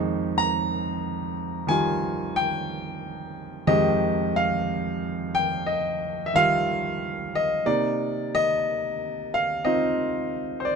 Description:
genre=solo jazz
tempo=60 BPM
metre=4/4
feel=swing 68% on 8ths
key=unclear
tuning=A4 = 440 Hz
part: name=clear concert grand piano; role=solo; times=0.0-10.8 s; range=F2 to Bb5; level=-23 LUFS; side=equal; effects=none
room=little or no reverb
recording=close, detailed microphones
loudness=-23 LUFS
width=side -5 dB against mid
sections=0.0-10.8 A section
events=none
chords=0.0 Fm9; 7.6 Cm9

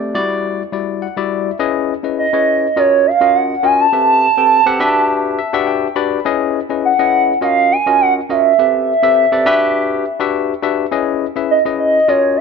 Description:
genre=funk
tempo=103 BPM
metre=4/4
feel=straight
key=unclear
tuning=A4 = 441 Hz
part: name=barky tine electric piano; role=accompaniment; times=0.0-12.4 s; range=G3 to B5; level=-17 LUFS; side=moving between left 10 dB and right 2 dB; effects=auto-pan
part: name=gliding portamento lead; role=melody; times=2.2-12.4 s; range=C#5 to A5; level=-12 LUFS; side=right 2 dB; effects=chorus, phaser, slapback echo
room=light reverb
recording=none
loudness=-12 LUFS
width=side -5 dB against mid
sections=0.0-1.6 A section; 1.6-12.4 B section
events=tine electric piano fill 0.7-1.6, 5.1-6.3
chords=0.1 Em9; 1.6 C#m9; 2.8 D#m9; 3.9 Am9; 4.8 Em9; 6.3 C#m9; 7.4 D#m9; 8.6 Am9; 9.5 Em9; 10.9 C#m9

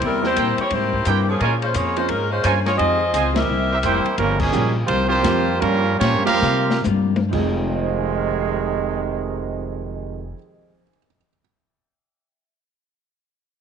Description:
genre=jazz, big band swing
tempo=121-174 BPM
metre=4/4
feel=swing 63% on 8ths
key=F minor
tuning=A4 = 439 Hz
part: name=mellow saxophone section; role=melody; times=0.0-4.1 s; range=E3 to E5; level=-21 LUFS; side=left 1 dB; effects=tape echo
part: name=hollow-body jazz guitar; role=accompaniment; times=0.0-10.9 s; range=F2 to F4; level=-28 LUFS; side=left 13 dB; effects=none
part: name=upright bass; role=bass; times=0.0-10.3 s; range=F1 to C3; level=-24 LUFS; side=equal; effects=none
part: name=open jazz drum kit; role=drums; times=0.0-7.5 s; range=crash cymbal, hi-hat, kick drum, ride cymbal, snare drum, toms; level=-28 LUFS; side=left 5 dB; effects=none
part: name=warm baby grand piano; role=accompaniment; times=0.2-11.4 s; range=F2 to C7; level=-28 LUFS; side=right 11 dB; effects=none
part: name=clear trumpet section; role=stabs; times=0.4-4.0 s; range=E4 to Ab5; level=-26 LUFS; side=right 9 dB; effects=none
part: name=warm trombone section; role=second line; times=3.3-10.3 s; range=F2 to F4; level=-26 LUFS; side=right 9 dB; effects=none
part: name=clear trumpet section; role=melody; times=3.7-6.8 s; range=G3 to F5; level=-20 LUFS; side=right 2 dB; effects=none
room=moderate echo chamber reverb, RT60 1.4 s, small room ambience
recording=1960s-style stereo with parts hard left and right, nothing above 10.5 kHz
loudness=-17 LUFS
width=side -7 dB against mid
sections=0.0-4.2 A section; 4.2-7.3 B section; 7.3-11.3 C section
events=band accent 3.3, 4.3; slowing down 4.2-7.3; drum fill 6.4-7.3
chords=0.0 C7; 1.4 Bbm7; 2.8 Fm7; 3.5 C7; 4.2 Gm7b5; 4.9 C7sus4; 5.6 Gm7b5; 6.4 C7sus4; 7.3 Fm7

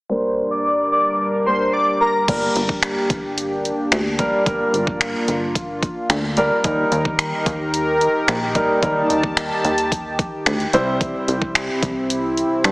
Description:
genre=dance-pop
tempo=110 BPM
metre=4/4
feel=straight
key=G minor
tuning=A4 = 440 Hz
part: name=airy dreamy lead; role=melody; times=0.1-2.1 s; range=Bb4 to D5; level=-18 LUFS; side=equal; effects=chorus, sidechain pumping, low-pass filter, digital delay
part: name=dark baby grand piano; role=accompaniment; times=0.1-11.6 s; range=G3 to C5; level=-21 LUFS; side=equal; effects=sidechain pumping, low-pass filter
part: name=warm analog pad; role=sustained chords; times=0.1-12.7 s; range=G2 to A5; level=-23 LUFS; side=equal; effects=chorus, sidechain pumping, low-pass filter
part: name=plucky analog bass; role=bass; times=2.3-12.7 s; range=G1 to G2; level=-25 LUFS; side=equal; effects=sidechain pumping
part: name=pop drum kit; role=drums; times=2.3-12.7 s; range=crash cymbal, finger snaps, hi-hat, kick drum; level=-22 LUFS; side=equal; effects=overdrive
room=wet lush hall reverb, RT60 1.9 s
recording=heavily compressed radio sound, multiband compression, small speaker sound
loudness=-17 LUFS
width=side -22 dB against mid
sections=0.1-2.3 A section; 2.3-12.7 B section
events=filter sweep 0.1-2.3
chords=0.1 Gm; 6.6 Eb; 10.7 C

